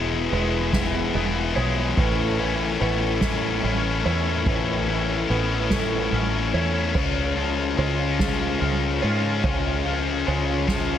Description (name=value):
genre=post-rock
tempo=48 BPM (dotted quarters)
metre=6/8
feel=straight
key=unclear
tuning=A4 = 444 Hz
part: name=chorused pulse-width pad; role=sustained chords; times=0.0-11.0 s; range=E#4 to B5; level=-35 LUFS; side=right 5 dB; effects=none
part: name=felt-muted upright piano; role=arpeggios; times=0.0-11.0 s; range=G#4 to C#5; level=-33 LUFS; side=right 8 dB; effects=slapback echo
part: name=twangy electric guitar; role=arpeggios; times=0.0-11.0 s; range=E2 to G#4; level=-32 LUFS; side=right 2 dB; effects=ensemble chorus, slapback echo
part: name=distorted electric guitar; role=riff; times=0.0-11.0 s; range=A2 to E#4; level=-24 LUFS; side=left 6 dB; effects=overdrive
part: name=fingered electric bass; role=bass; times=0.0-11.0 s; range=E1 to G#2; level=-26 LUFS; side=right 1 dB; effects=none
part: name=soft-mallet drum kit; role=drums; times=0.3-10.9 s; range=crash cymbal, kick drum, ride cymbal, snare drum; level=-28 LUFS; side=equal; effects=none
room=light reverb, small room ambience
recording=none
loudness=-20 LUFS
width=side -10 dB against mid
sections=0.0-11.0 A section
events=none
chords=0.0 E; 2.0 Aadd9; 7.0 C#